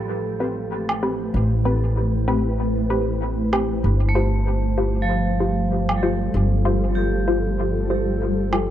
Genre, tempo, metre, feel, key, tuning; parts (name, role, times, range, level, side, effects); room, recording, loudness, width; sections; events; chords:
ambient dub; 96 BPM; 4/4; swing 56% on 16ths; A4 = 439 Hz
granular cloud pad; sustained chords; 0.0-8.7 s; G3 to G5; -26 LUFS; left 1 dB; built-in reverb
vibraphone with hard mallets; arpeggios; 0.0-8.7 s; F3 to A4; -28 LUFS; right 3 dB; low-pass filter, dub echo
upright bass; bass; 0.0-8.7 s; G1 to A1; -23 LUFS; equal; tube saturation
filtered dub chord stab; stabs; 0.4-8.7 s; C4 to C5; -26 LUFS; left 2 dB; wide subtle chorus, dub echo
woodblock; drums; 0.9-8.7 s; -27 LUFS; right 2 dB; overdrive, dub echo
moderate spring reverb, RT60 2.4 s; -19 LUFS; side -11 dB against mid
0.0-8.7 A section
filter sweep on vibraphone 0.0-8.7
0.0 Am9; 3.8 G7sus4